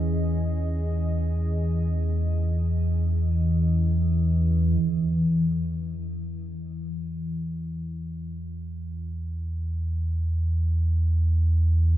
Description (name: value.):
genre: dark ambient drone.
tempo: free time.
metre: none.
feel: none.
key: unclear.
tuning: A4 = 440 Hz.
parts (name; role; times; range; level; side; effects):
dark analog pad; sustained chords; 0.0-4.8 s; C#4 to D#5; -38 LUFS; right 2 dB; chorus, shimmer reverb.
deep rumbling drone; drone; 0.0-12.0 s; E2 to E3; -23 LUFS; equal; built-in reverb.
room: wet huge ambient reverb, RT60 7.6 s.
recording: none.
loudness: -23 LUFS.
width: side -12 dB against mid.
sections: 0.0-4.8 A section; 4.8-12.0 B section.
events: filter sweep on synth drone 4.8-12.0.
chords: 0.0 C#m; 4.8 N.C..